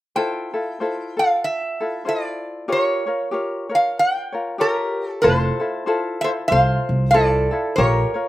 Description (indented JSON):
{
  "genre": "Hawaiian",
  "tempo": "95 BPM",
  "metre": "4/4",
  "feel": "swing 59% on 8ths",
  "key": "F major",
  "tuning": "A4 = 441 Hz",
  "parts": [
    { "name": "metal-body resonator slide guitar", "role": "melody", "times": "0.2-8.3 s", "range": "G4 to G5", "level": "-20 LUFS", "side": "right 1 dB", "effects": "none" },
    { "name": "ukulele", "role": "accompaniment", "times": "0.2-8.3 s", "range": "E4 to Db5", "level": "-24 LUFS", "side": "left 2 dB", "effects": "slapback echo" },
    { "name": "upright bass", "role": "bass", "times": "5.2-8.0 s", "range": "F1 to C2", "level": "-20 LUFS", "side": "right 1 dB", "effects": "none" }
  ],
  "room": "little or no reverb",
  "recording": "recorded outdoors, with no room sound",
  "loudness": "-18 LUFS",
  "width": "side -16 dB against mid",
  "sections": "0.1-5.2 A section; 5.2-8.3 B section",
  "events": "none",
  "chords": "0.1 Fmaj7; 2.7 Bbm6; 5.2 Fmaj7; 7.8 Bbm6",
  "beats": "| 0.15 0.79 1.42 2.06 | 2.69 3.33 3.96 4.60 | 5.23 5.86 6.50 7.13 | 7.77"
}